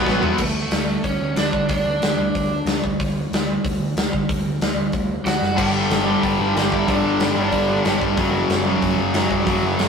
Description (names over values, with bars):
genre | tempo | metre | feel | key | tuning
punk rock | 185 BPM | 4/4 | straight | unclear | A4 = 441 Hz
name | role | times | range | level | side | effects
overdriven electric guitar | melody | 0.0-2.8, 5.3-8.0 s | A3 to G5 | -24 LUFS | right 1 dB | none
crunchy overdriven guitar | riff | 0.0-0.4, 5.6-9.9 s | F#2 to B3 | -25 LUFS | equal | none
overdriven electric guitar | riff | 0.0-0.4, 5.5-9.9 s | F#2 to B3 | -24 LUFS | right 2 dB | none
tight distorted guitar | riff | 0.0-0.4, 5.6-9.9 s | F#2 to B3 | -23 LUFS | left 5 dB | distortion
overdriven picked electric bass | bass | 0.1-9.9 s | F#1 to D3 | -27 LUFS | right 1 dB | none
big rock drum kit | drums | 0.1-9.9 s | crash cymbal, hi-hat, kick drum, snare drum, toms | -22 LUFS | left 1 dB | none
room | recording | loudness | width
light reverb | rough rehearsal-room recording, tube saturation | -18 LUFS | side -6 dB against mid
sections
0.4-9.9 A section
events
drum fill 0.1-0.4, 5.4; half time 0.4-9.9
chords
0.4 D5; 5.6 G5; 8.2 F#5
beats
0.07 | 0.40 0.72 1.05 1.37 | 1.70 2.02 2.35 2.67 | 3.00 3.32 3.65 3.97 | 4.29 4.62 4.94 5.27 | 5.59 5.92 6.24 6.56 | 6.89 7.21 7.53 7.86 | 8.18 8.50 8.82 9.15 | 9.47 9.79